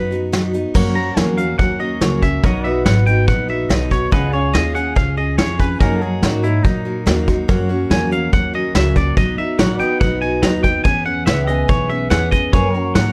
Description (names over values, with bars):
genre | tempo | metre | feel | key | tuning
honky-tonk and classic country | 143 BPM | 4/4 | straight | unclear | A4 = 440 Hz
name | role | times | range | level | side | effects
picked steel-string acoustic guitar | accompaniment | 0.0-13.1 s | F#2 to A#4 | -23 LUFS | equal | none
upright bass | bass | 0.0-13.1 s | G#1 to A#2 | -23 LUFS | equal | none
vintage brush drum kit | drums | 0.1-13.1 s | crash cymbal, hi-hat, kick drum, snare drum | -20 LUFS | equal | none
pedal steel guitar | sustained chords | 0.8-13.1 s | G#4 to G#5 | -29 LUFS | equal | none
twangy electric guitar | second line | 1.0-13.1 s | D#4 to A#5 | -25 LUFS | equal | analog delay
room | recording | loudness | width
light reverb | dark, warm production | -17 LUFS | mono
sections
0.7-13.1 A section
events
clean electric guitar solo 0.7-13.1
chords
0.0 B; 0.7 F#; 2.4 B; 4.1 C#; 5.8 F#6; 7.5 F#; 9.2 B; 10.9 E6; 12.5 F#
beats
0.33 | 0.75 1.17 1.59 2.01 | 2.43 2.86 3.28 3.70 | 4.12 4.54 4.96 5.38 | 5.80 6.22 6.64 7.07 | 7.49 7.91 8.33 8.75 | 9.17 9.59 10.01 10.43 | 10.85 11.27 11.69 12.11 | 12.54 12.96